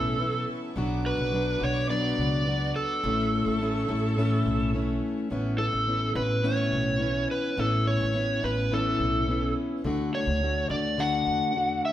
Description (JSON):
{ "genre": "acoustic pop", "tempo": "106 BPM", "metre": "4/4", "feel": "straight", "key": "A major", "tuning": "A4 = 440 Hz", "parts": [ { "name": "overdriven slide guitar", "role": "melody", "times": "0.0-11.9 s", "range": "A4 to F#5", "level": "-28 LUFS", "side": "equal", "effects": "none" }, { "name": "fingerpicked plugged-in steel-string acoustic guitar", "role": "accompaniment", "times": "0.0-11.9 s", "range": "A2 to F#4", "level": "-28 LUFS", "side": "left 2 dB", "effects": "none" }, { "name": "warm studio string section", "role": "sustained chords", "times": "0.0-5.3 s", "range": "A4 to D6", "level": "-40 LUFS", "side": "equal", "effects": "none" }, { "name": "upright bass", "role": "bass", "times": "0.0-11.8 s", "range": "A1 to E2", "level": "-30 LUFS", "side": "right 1 dB", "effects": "none" } ], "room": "wet stone room reverb, RT60 1.3 s", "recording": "band playing live in one room", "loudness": "-24 LUFS", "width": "side -12 dB against mid", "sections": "0.0-5.3 A section; 5.3-11.9 A section", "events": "none", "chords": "0.0 Aadd9; 0.8 Bm; 3.0 Aadd9; 9.8 D" }